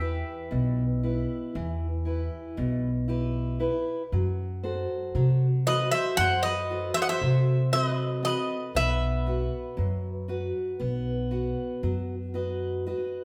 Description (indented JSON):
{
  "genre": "greek folk, Greek bouzouki band",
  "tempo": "117 BPM (eighths)",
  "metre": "9/8",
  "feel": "straight",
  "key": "E harmonic minor",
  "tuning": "A4 = 440 Hz",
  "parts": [
    { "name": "Greek bouzouki", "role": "melody", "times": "0.0-12.3 s", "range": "D#5 to G5", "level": "-30 LUFS", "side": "equal", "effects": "none" },
    { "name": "mandolin", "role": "second line", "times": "0.0-12.3 s", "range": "B4 to E5", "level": "-38 LUFS", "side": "equal", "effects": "none" },
    { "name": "picked steel-string acoustic guitar", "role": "accompaniment", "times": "0.0-13.2 s", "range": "B2 to F#5", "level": "-34 LUFS", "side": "equal", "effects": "none" },
    { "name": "upright bass", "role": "bass", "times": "0.0-12.9 s", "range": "B1 to C3", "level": "-30 LUFS", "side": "equal", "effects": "none" }
  ],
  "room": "wet large studio reverb, RT60 1.2 s",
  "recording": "band playing live in one room",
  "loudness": "-28 LUFS",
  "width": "mono",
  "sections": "0.0-13.2 A section",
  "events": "none",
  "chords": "0.0 Em; 4.1 F#dim; 8.8 B"
}